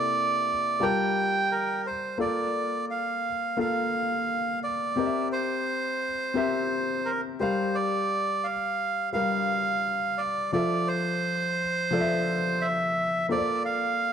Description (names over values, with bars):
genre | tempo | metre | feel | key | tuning
soul | 86 BPM | 4/4 | straight | unclear | A4 = 440 Hz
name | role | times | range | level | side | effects
melodica | melody | 0.0-14.1 s | Bb4 to G5 | -26 LUFS | right 2 dB | none
warm grand piano | accompaniment | 0.0-14.1 s | C3 to A5 | -29 LUFS | left 3 dB | none
room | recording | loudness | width
moderate echo chamber reverb, RT60 2.3 s | dark, warm production | -25 LUFS | side -8 dB against mid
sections
0.0-2.2 A section; 2.2-14.1 B section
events
none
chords
0.0 C13; 0.8 Gm9; 2.2 Bbmaj7; 5.0 C7; 7.4 Gm7; 10.5 Fmaj7; 13.3 Bbmaj7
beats
0.12 0.81 1.50 | 2.20 2.89 3.59 4.28 | 4.97 5.67 6.36 7.06 | 7.75 8.45 9.14 9.83 | 10.53 11.22 11.91 12.61 | 13.30 14.00